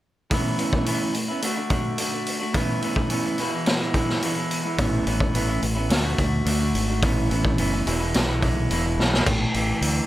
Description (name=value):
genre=quiet-loud alternative rock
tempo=107 BPM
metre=4/4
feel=straight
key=A major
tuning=A4 = 440 Hz
part: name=electric guitar through a small old amp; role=arpeggios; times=0.3-10.1 s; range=E2 to F#4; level=-25 LUFS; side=right 1 dB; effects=none
part: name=raw garage drum kit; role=drums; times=0.3-10.0 s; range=crash cymbal, hi-hat, kick drum, snare drum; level=-24 LUFS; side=equal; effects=none
part: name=growling fingered electric bass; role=bass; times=4.8-10.0 s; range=E1 to D2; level=-25 LUFS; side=equal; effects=overdrive
room=light reverb, studio reverb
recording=none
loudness=-21 LUFS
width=side -14 dB against mid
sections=0.3-9.3 A section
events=drum fill 9.0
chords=0.3 Aadd9; 1.4 D; 2.5 Aadd9; 3.4 E; 4.8 Aadd9; 5.9 D; 7.0 Aadd9; 7.9 E; 9.3 A5